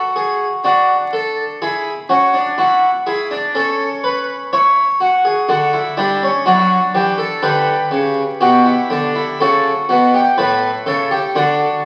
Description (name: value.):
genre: classical, baroque-style 3-part fugue for harpsichord.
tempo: 62 BPM.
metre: 4/4.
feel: straight.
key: D major.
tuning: A4 = 441 Hz.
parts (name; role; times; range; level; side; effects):
harpsichord; solo; 0.0-11.8 s; A2 to C#5; -16 LUFS; equal; none.
room: wet recital hall reverb, RT60 1.5 s.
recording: very old 78 rpm record, vinyl crackle.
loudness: -15 LUFS.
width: mono.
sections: 0.0-11.8 A section.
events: none.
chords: 0.0 D/F#; 1.6 E7; 3.5 A/C#; 5.5 D; 7.4 G; 9.4 A7.